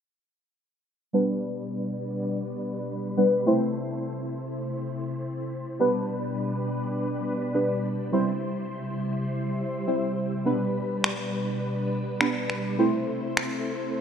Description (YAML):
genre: dance-pop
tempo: 103 BPM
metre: 4/4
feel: straight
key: G major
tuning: A4 = 442 Hz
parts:
  - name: deep mellow chord stab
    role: accompaniment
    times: 1.1-14.0 s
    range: G3 to C5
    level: -26 LUFS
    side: right 1 dB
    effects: chorus, phaser, low-pass filter
  - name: ensemble organ-string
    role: sustained chords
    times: 1.1-14.0 s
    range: B2 to C5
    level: -29 LUFS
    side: equal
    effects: ensemble chorus, low-pass filter
  - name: electronic finger snaps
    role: drums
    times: 11.0-13.5 s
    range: none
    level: -28 LUFS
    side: equal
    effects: none
room: wet lush hall reverb, RT60 2.8 s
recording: rough home demo mix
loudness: -25 LUFS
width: side -8 dB against mid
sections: 1.1-14.0 A section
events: filter sweep 1.1-14.0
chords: 1.1 G; 3.5 Am; 5.8 G; 8.1 C; 10.5 G; 12.8 Am